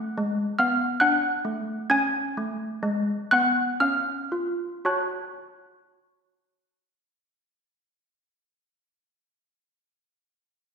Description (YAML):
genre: classical, tune for handbells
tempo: 55-72 BPM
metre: 3/4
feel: straight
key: F# minor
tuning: A4 = 440 Hz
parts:
  - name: malleted handbells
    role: solo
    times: 0.0-8.3 s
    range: G#3 to G#6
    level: -23 LUFS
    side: equal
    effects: none
room: wet recital hall reverb, RT60 1.5 s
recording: recorded in a church or concert hall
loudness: -22 LUFS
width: side -6 dB against mid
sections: 0.0-4.9 A section; 4.9-8.1 B section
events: slowing down 0.0-4.9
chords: 0.0 C# (rootless); 1.0 D; 1.9 C#7sus4; 3.8 C#; 4.9 F#m